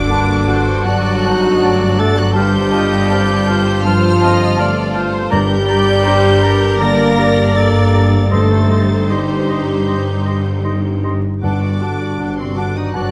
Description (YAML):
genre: cinematic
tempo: 80 BPM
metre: 4/4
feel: rubato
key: G minor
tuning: A4 = 439 Hz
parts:
  - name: rich studio violin section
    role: melody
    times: 0.0-13.1 s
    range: C6 to Bb6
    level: -28 LUFS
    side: equal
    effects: none
  - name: clear clarinet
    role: second line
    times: 0.0-13.1 s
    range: C4 to Bb4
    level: -24 LUFS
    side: equal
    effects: none
  - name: clear studio violin section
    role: second line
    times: 0.0-13.1 s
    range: D4 to D5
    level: -28 LUFS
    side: equal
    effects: none
  - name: clear studio viola section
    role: accompaniment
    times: 0.0-13.1 s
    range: Bb3 to Eb5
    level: -26 LUFS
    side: equal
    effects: none
  - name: felt-muted upright piano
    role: accompaniment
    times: 0.0-13.1 s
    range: G2 to G4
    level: -24 LUFS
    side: equal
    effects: none
  - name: warm French horn section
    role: sustained chords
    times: 0.0-13.1 s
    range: C3 to Bb3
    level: -21 LUFS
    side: equal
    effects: none
  - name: clear studio cello section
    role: bass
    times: 0.0-13.1 s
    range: G2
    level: -22 LUFS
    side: equal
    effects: none
  - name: clear studio double bass section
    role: bass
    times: 0.0-13.1 s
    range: G1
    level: -22 LUFS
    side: equal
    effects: none
  - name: concert flute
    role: second line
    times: 0.1-13.0 s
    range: A5 to C6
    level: -28 LUFS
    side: equal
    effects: none
  - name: mellow oboe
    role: second line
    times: 0.1-13.1 s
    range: D5 to F#5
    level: -29 LUFS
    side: equal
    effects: none
  - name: timpani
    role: percussion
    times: 5.3-12.5 s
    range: G2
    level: -29 LUFS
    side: equal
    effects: none
room: moderate scoring stage reverb, RT60 1.9 s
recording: vinyl crackle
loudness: -14 LUFS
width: mono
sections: 0.0-13.1 A section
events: none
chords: 0.0 D/G; 2.4 F/G; 5.3 Gm; 8.3 Cm/G; 11.4 D/G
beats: 0.10 0.86 1.62 | 2.36 3.10 3.85 4.58 | 5.32 6.07 6.81 7.56 | 8.32 9.10 9.89 10.65 | 11.43 12.20 12.95